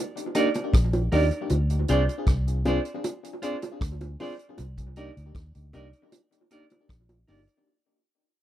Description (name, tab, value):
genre	lovers rock reggae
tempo	78 BPM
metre	4/4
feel	straight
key	C minor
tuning	A4 = 436 Hz
part	vintage drum kit	drums	0.2-7.6 s	hi-hat, kick drum, rim click	-26 LUFS	equal	none
part	FM electric piano	accompaniment	0.3-7.4 s	Bb3 to Ab4	-31 LUFS	left 4 dB	chorus, tape echo
part	clean electric guitar	stabs	0.3-7.5 s	Eb4 to D5	-28 LUFS	right 5 dB	spring reverb
part	bongos	percussion	0.6-7.5 s	none	-33 LUFS	right 1 dB	tape echo
part	vintage muted fingered electric bass	bass	0.7-7.5 s	G1 to Eb2	-26 LUFS	equal	none
room	little or no reverb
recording	dry, close 1970s-style studio recording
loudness	-23 LUFS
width	side -12 dB against mid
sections	0.0-7.7 A section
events	fade-out 0.0-7.7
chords	0.0 Cm9 (rootless); 1.5 Dm7b5; 4.6 Cm9